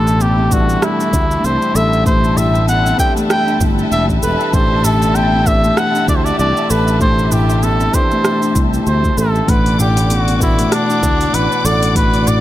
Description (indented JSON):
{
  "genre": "organic downtempo",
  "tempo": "97 BPM",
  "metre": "4/4",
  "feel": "swing 57% on 16ths",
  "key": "A dorian",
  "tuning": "A4 = 440 Hz",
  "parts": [
    { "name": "trumpet with cup mute", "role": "melody", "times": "0.0-12.4 s", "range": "D4 to G5", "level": "-17 LUFS", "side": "equal", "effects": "ping-pong delay" },
    { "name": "tine electric piano", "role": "accompaniment", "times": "0.0-12.4 s", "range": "B2 to F#5", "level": "-22 LUFS", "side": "left 3 dB", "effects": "sidechain pumping, ping-pong delay" },
    { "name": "warm studio string section", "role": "sustained chords", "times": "0.0-12.4 s", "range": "G3 to D6", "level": "-24 LUFS", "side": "left 1 dB", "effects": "sidechain pumping" },
    { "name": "buzzing kalimba", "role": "arpeggios", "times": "0.0-12.4 s", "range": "A3 to A4", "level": "-20 LUFS", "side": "equal", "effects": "ping-pong delay" },
    { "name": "sustaining fretless electric bass", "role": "bass", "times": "0.0-12.4 s", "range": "E1 to D2", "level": "-17 LUFS", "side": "equal", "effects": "none" },
    { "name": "afro-pop drum kit", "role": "drums", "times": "0.1-12.4 s", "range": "cabasa, hi-hat, rim click", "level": "-22 LUFS", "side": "right 2 dB", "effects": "none" },
    { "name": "darbuka", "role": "percussion", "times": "0.1-12.4 s", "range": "none", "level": "-24 LUFS", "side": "left 1 dB", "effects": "none" },
    { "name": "electronic kick drum", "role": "drums", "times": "0.5-12.1 s", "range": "none", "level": "-17 LUFS", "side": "equal", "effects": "none" }
  ],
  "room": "light reverb, small room ambience",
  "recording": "none",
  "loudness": "-12 LUFS",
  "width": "side -14 dB against mid",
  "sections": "0.0-12.4 A section",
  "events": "none",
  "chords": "0.0 Am7; 9.5 Bm",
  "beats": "0.21 0.82 1.44 | 2.06 2.68 3.30 3.92 | 4.54 5.16 5.77 6.39 | 7.01 7.63 8.25 8.87 | 9.48 10.10 10.72 11.34 | 11.96"
}